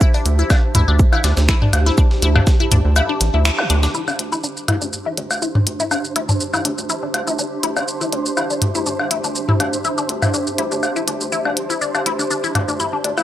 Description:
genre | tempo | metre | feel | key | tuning
minimal techno | 122 BPM | 4/4 | swing 54% on 16ths | unclear | A4 = 441 Hz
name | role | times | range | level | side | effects
resonant blip pluck | riff | 0.0-13.2 s | D4 to E4 | -23 LUFS | left 4 dB | phaser, sidechain pumping, tape echo
breakbeat sampler-style drum kit | drums | 0.0-3.9 s | hi-hat, shaker, snare drum | -28 LUFS | right 1 dB | high-pass filter on perc, high-pass filter on snare, high-pass filter on hats
electronic kick drum | drums | 0.0-2.6 s | none | -14 LUFS | equal | none
granular cloud pad | texture | 0.0-13.2 s | D4 to A5 | -25 LUFS | right 2 dB | built-in reverb, sidechain pumping
rubbery square bass | bass | 0.3-13.2 s | A1 to D2 | -20 LUFS | equal | sidechain pumping, high-pass filter
minimal click drum kit | drums | 0.3-13.2 s | finger snaps, hi-hat, shaker | -23 LUFS | equal | none
electronic woodblock and toms | percussion | 0.5-13.2 s | none | -20 LUFS | equal | overdrive, tape echo
zap | sound effects | 3.6-3.7 s | none | -29 LUFS | right 1 dB | none
flickering grainy texture | texture | 5.1-13.2 s | C5 | -32 LUFS | right 3 dB | built-in reverb, sidechain pumping
room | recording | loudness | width
light reverb | dry, gritty hardware recording | -16 LUFS | side -12 dB against mid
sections
0.0-3.9 A section; 3.9-13.2 B section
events
kick drops out 3.0-3.9; band accent 3.5; filter sweep on synth arpeggio sound 3.9-13.2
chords
0.0 D7(no3); 3.9 Dm7

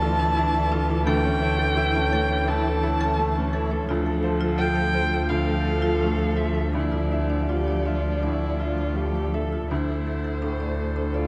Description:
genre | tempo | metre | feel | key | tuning
neoclassical piano and strings | 83 BPM | 4/4 | uneven beats, rubato | D minor | A4 = 440 Hz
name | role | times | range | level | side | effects
muted violin | melody | 0.0-11.3 s | A4 to A5 | -30 LUFS | equal | analog delay
muted cello | second line | 0.0-11.3 s | E3 to F4 | -33 LUFS | equal | analog delay
bright upright piano | accompaniment | 0.0-11.3 s | D2 to E5 | -33 LUFS | equal | none
muted viola | accompaniment | 0.0-11.3 s | A3 to A4 | -34 LUFS | equal | none
marimba with hard mallets | arpeggios | 0.0-11.2 s | D4 to A5 | -34 LUFS | equal | analog delay
muted double bass | bass | 0.0-11.3 s | D2 | -28 LUFS | equal | none
room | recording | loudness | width
wet lush hall reverb, RT60 2.5 s | dreamy mix soaked in reverb | -24 LUFS | mono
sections
0.0-9.7 A section; 9.7-11.3 B section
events
none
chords
0.0 Dmadd9; 1.1 A/D; 3.9 F/D; 6.7 Dmadd9; 9.7 Dsus2

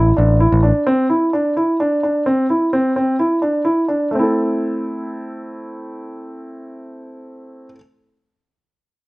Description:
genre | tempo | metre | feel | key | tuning
progressive instrumental, progressive | 129 BPM | 7/4 | straight | A minor | A4 = 442 Hz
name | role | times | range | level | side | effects
warm concert grand piano | arpeggios | 0.0-7.8 s | A3 to A4 | -17 LUFS | equal | none
picked electric bass | bass | 0.0-0.7 s | A1 | -13 LUFS | equal | none
room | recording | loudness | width
light reverb, small room ambience | worn, warbling old tape, cassette tape, warbly pitch drift | -15 LUFS | side -22 dB against mid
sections
0.0-4.1 A section; 4.1-7.4 B section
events
none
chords
0.0 A5; 0.9 Cadd9; 4.1 Am

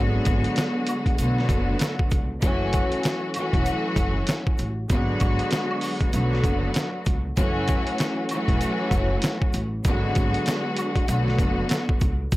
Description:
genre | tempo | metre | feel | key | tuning
hip hop, boom-bap hip-hop | 97 BPM | 4/4 | swing 60% on 16ths | F# minor | A4 = 436 Hz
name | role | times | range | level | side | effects
clear studio string section | accompaniment | 0.0-12.1 s | D3 to F#4 | -25 LUFS | left 1 dB | high-pass filter, low-pass filter
upright bass | bass | 0.0-12.4 s | E1 to C#2 | -26 LUFS | equal | tube saturation
trip hop sampler-style drum kit | drums | 0.3-12.4 s | hi-hat, kick drum, snare drum | -24 LUFS | equal | none
egg shaker and woodblock | percussion | 0.3-12.4 s | none | -37 LUFS | right 2 dB | none
room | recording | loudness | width
little or no reverb | dry, gritty hardware recording | -21 LUFS | side -18 dB against mid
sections
0.0-12.4 A section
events
none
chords
0.0 G#m7b5; 1.2 Bm7; 2.4 F#m7; 4.9 G#m7b5; 6.1 Bm7; 7.4 F#m7; 9.8 G#m7b5; 11.1 Bm7

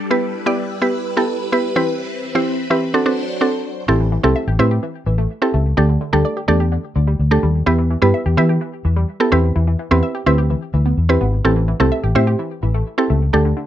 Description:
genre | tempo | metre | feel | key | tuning
pop | 127 BPM | 4/4 | straight | unclear | A4 = 440 Hz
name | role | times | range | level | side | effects
phased string machine | sustained chords | 0.0-3.9 s | E3 to C5 | -24 LUFS | left 1 dB | ensemble chorus, phaser
mallet-like synth pluck | accompaniment | 0.1-13.6 s | E3 to D5 | -18 LUFS | right 2 dB | chorus
wide unison pluck | arpeggios | 3.9-13.7 s | D3 to E5 | -26 LUFS | left 1 dB | phaser, ping-pong delay
vintage muted fingered electric bass | bass | 3.9-13.5 s | G#1 to E3 | -16 LUFS | left 1 dB | none
room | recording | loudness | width
light reverb | rough home demo mix | -15 LUFS | side -12 dB against mid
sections
0.0-3.9 A section; 3.9-13.7 B section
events
none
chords
0.1 Em; 1.8 Cmaj7/E; 2.9 D7; 3.9 Am7; 5.8 Dsus4; 7.7 Em; 9.3 Cmaj7; 11.4 Am7

